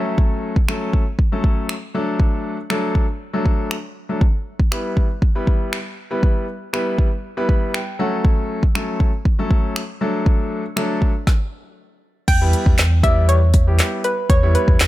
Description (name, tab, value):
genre	dance-pop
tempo	119 BPM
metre	4/4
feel	straight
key	E dorian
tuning	A4 = 439 Hz
part	clear concert grand piano	accompaniment	0.0-14.8 s	F#3 to B5	-23 LUFS	left 1 dB	sidechain pumping
part	deep house drum kit	drums	0.2-14.9 s	crash cymbal, finger snaps, handclaps, hi-hat, kick drum, snare drum	-17 LUFS	equal	none
part	hollow square pluck	melody	12.3-14.9 s	B4 to G5	-22 LUFS	equal	chorus
part	sub bass with octave	bass	12.3-14.9 s	E2	-16 LUFS	equal	sidechain pumping
room	digital ambience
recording	none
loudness	-16 LUFS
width	side -16 dB against mid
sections	0.0-12.3 A section; 12.3-14.9 B section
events	grand piano fill 0.0, 7.2-8.2; stop 11.3-12.3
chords	0.0 F#m; 1.9 D; 4.2 Em; 8.0 F#m; 10.0 D; 12.3 Em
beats	| 0.18 0.68 1.19 1.69 | 2.20 2.70 3.21 3.71 | 4.21 4.72 5.22 5.73 | 6.23 6.73 7.24 7.74 | 8.25 8.75 9.26 9.76 | 10.26 10.77 11.27 11.78 | 12.28 12.78 13.29 13.79 | 14.30 14.80